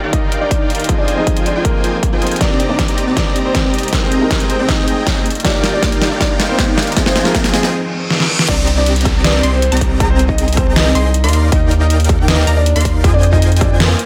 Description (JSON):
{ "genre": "future bass", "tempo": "158 BPM", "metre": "4/4", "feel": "half-time", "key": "C minor", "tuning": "A4 = 440 Hz", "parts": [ { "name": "felt-muted upright piano", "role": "accompaniment", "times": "0.0-8.5 s", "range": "C3 to D6", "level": "-26 LUFS", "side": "equal", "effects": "sidechain pumping, delay" }, { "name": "muted studio string section", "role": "sustained chords", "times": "0.0-8.5 s", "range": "C3 to G5", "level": "-31 LUFS", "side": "equal", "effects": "none" }, { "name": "dense compressed supersaw", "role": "riff", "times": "0.0-14.0 s", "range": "C4 to C6", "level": "-22 LUFS", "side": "equal", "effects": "sidechain pumping, low-pass filter" }, { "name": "saturated sub bass", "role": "bass", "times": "0.0-14.0 s", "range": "C2 to F2", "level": "-19 LUFS", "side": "equal", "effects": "sidechain pumping, high-pass filter" }, { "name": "riser, reverse cymbal and downlifter", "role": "sound effects", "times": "0.4-11.5 s", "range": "none", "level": "-28 LUFS", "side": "equal", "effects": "none" }, { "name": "clear grand piano", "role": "melody", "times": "0.1-14.1 s", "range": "Ab3 to Eb5", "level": "-24 LUFS", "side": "equal", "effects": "sidechain pumping, digital delay" }, { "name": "dubstep drum kit", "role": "drums", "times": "0.1-14.1 s", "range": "crash cymbal, hi-hat, rim click, snare drum", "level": "-21 LUFS", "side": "equal", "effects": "overdrive" }, { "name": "electronic kick drum", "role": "drums", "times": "0.1-13.7 s", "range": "none", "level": "-19 LUFS", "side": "equal", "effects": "overdrive" }, { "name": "unison pluck", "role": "arpeggios", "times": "8.5-14.0 s", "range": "Ab4 to C6", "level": "-29 LUFS", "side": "equal", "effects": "sidechain pumping" } ], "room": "light reverb", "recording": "none", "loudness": "-14 LUFS", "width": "mono", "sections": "0.0-8.5 A section; 8.5-14.1 B section", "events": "build-up 0.0-8.5; drum fill 2.4-7.7, 8.1-8.5; reverse cymbal 7.7-8.5; drop 8.5-14.1", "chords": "0.0 Ebmaj9; 0.9 Fm7; 2.4 Cm9; 3.9 Abmaj9/C; 5.3 Ebmaj9; 7.0 Fm7; 8.5 Cm9; 10.0 Abmaj9/C; 11.3 Ebmaj9; 13.0 Fm7" }